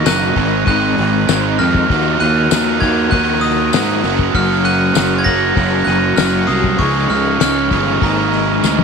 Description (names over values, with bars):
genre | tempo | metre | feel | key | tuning
indie rock | 98 BPM | 4/4 | straight | unclear | A4 = 440 Hz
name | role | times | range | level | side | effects
glockenspiel with hard plastic mallets | melody | 0.0-8.8 s | Bb5 to Bb6 | -18 LUFS | right 1 dB | slapback echo
combo organ | sustained chords | 0.0-8.8 s | Ab4 to Eb6 | -28 LUFS | right 12 dB | none
crunchy overdriven guitar | riff | 0.0-8.8 s | Ab2 to Ab4 | -18 LUFS | right 16 dB | analog chorus, slapback echo
electric guitar through a small old amp | riff | 0.0-8.8 s | Db3 to Bb4 | -21 LUFS | left 14 dB | tremolo
fuzz fingered electric bass | bass | 0.0-8.8 s | Gb1 to Ab2 | -19 LUFS | equal | overdrive
glockenspiel with soft plastic mallets | second line | 0.1-8.8 s | Eb6 to Gb7 | -27 LUFS | left 13 dB | none
cloth-damped thuddy drum kit | drums | 0.1-8.8 s | hi-hat, kick drum, snare drum, toms | -21 LUFS | left 5 dB | none
tambourine | percussion | 0.1-8.8 s | none | -25 LUFS | left 17 dB | none
room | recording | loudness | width
small room reverb | 1960s-style stereo with parts hard left and right | -12 LUFS | side -5 dB against mid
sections
0.0-8.8 A section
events
drum fill 8.6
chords
0.4 Abadd9; 1.9 Ebmadd9; 4.0 Gb; 6.8 Dbadd9; 8.0 Absus2